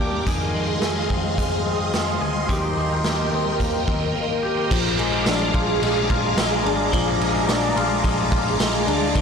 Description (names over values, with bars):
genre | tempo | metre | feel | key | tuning
dream pop | 108 BPM | 4/4 | straight | unclear | A4 = 440 Hz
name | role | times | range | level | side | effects
phased string machine | sustained chords | 0.0-9.2 s | G4 to D6 | -24 LUFS | right 2 dB | ensemble chorus, phaser
clean electric guitar | arpeggios | 0.0-9.2 s | Eb3 to Ab4 | -24 LUFS | left 4 dB | analog chorus, tape echo
vintage muted picked electric bass | bass | 0.0-9.2 s | Ab1 to F2 | -28 LUFS | right 1 dB | tube saturation
raw garage drum kit | drums | 0.3-9.2 s | crash cymbal, hi-hat, kick drum, ride cymbal, snare drum, tambourine | -24 LUFS | right 1 dB | none
room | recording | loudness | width
moderate plate reverb, RT60 2.7 s | blown-out, overdriven recording, overdrive | -19 LUFS | side -6 dB against mid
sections
0.0-4.7 A section; 4.7-9.2 B section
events
none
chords
0.3 Fm7; 2.5 Eb6; 4.7 Bb7